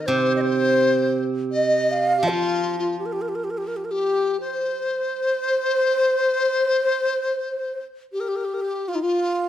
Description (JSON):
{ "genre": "chinese traditional, Chinese chamber ensemble", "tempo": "82 BPM", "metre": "4/4", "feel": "rubato", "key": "C yu mode", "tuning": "A4 = 440 Hz", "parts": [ { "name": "breathy low xiao", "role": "melody", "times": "0.0-9.5 s", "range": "Eb4 to F5", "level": "-23 LUFS", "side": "right 1 dB", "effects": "none" }, { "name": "mellow large dizi", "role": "second line", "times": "0.0-9.5 s", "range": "F4 to Eb5", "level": "-24 LUFS", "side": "left 4 dB", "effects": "none" }, { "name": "steel-string zither", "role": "accompaniment", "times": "0.0-4.4 s", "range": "C3 to F3", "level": "-24 LUFS", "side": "right 3 dB", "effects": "none" } ], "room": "light reverb", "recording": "close, detailed microphones", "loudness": "-20 LUFS", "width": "side -11 dB against mid", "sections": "0.0-8.9 A section", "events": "none", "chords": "none", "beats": "| 0.07 0.80 1.52 2.25 | 2.97 3.69 4.42 5.15 | 5.88 6.62 7.37 8.13 | 8.88" }